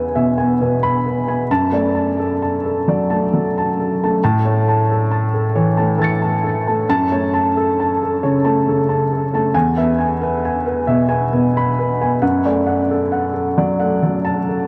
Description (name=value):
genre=neoclassical minimalist piano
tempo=45 BPM (dotted quarters)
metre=6/8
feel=rubato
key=unclear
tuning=A4 = 439 Hz
part: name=warm upright piano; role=solo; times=0.0-14.7 s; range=E2 to C#7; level=-17 LUFS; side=equal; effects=tape echo
room=wet huge ambient reverb, RT60 6.4 s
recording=dreamy mix soaked in reverb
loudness=-17 LUFS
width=mono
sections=0.0-14.7 A section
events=none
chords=0.0 E; 1.5 D/F#; 4.2 A; 6.9 F#m; 9.5 E; 12.2 D/F#